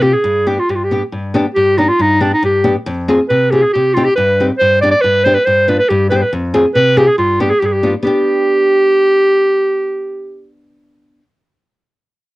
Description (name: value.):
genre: klezmer.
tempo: 139 BPM.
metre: 2/4.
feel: straight.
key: G phrygian dominant.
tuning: A4 = 440 Hz.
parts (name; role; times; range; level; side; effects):
clear clarinet; melody; 0.0-10.5 s; D4 to D5; -12 LUFS; right 1 dB; cassette tape.
nylon-string guitar; accompaniment; 0.0-11.2 s; F2 to Ab4; -16 LUFS; left 1 dB; cassette tape.
room: light reverb.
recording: home recording on cassette.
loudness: -11 LUFS.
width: side -19 dB against mid.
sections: 0.0-1.1 A section; 1.1-8.0 A section; 8.0-9.8 B section.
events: none.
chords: 0.2 G; 2.9 Fm; 3.7 Cm; 4.6 G; 6.3 Fm; 7.2 G.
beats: | 0.24 0.68 | 1.12 1.55 | 1.99 2.43 | 2.86 3.29 | 3.73 4.16 | 4.59 5.03 | 5.46 5.89 | 6.32 6.75 | 7.18 7.61 | 8.04 8.47 | 8.89 9.32.